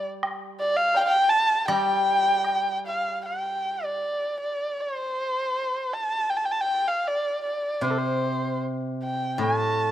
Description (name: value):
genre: chinese traditional, Chinese chamber ensemble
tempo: 78 BPM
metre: 2/4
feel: rubato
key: G shang mode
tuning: A4 = 438 Hz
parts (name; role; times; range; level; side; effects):
- dark erhu; melody; 0.0-9.9 s; A4 to A5; -24 LUFS; equal; none
- steel-string zither; accompaniment; 0.0-4.0, 7.8-9.9 s; A2 to G3; -28 LUFS; left 1 dB; none
- woodblock; percussion; 0.2-2.6 s; none; -33 LUFS; right 1 dB; none
room: light reverb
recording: close, detailed microphones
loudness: -23 LUFS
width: side -12 dB against mid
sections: 0.0-3.2 A section; 3.2-9.9 B section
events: none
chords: none